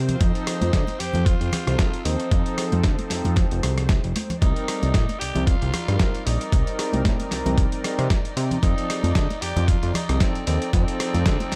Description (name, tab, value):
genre	nu-disco, nu disco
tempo	114 BPM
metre	4/4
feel	swing 55% on 16ths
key	unclear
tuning	A4 = 440 Hz
part	dark studio string section	sustained chords	0.0-11.6 s	C4 to D5	-38 LUFS	equal	sidechain pumping
part	fat analog bass	bass	0.0-11.6 s	F1 to D3	-26 LUFS	equal	none
part	growling tenor saxophone	melody	0.1-11.6 s	C4 to G4	-34 LUFS	equal	vintage 12-bit sampler grit, dub echo
part	dusty soul sampler-style drum kit	drums	0.1-11.6 s	hi-hat, rim click, snare drum	-31 LUFS	equal	overdrive, analog delay
part	congas	percussion	0.1-11.5 s	none	-34 LUFS	equal	analog delay
part	warm analog pad	accompaniment	0.2-11.6 s	F3 to Bb4	-33 LUFS	equal	chorus, sidechain pumping, analog delay
part	electronic kick drum	drums	0.2-11.4 s	none	-24 LUFS	equal	overdrive
room	light reverb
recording	echo-heavy mix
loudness	-22 LUFS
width	mono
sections	0.0-11.6 A section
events	none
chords	0.2 F7; 4.4 Cm7; 8.6 F7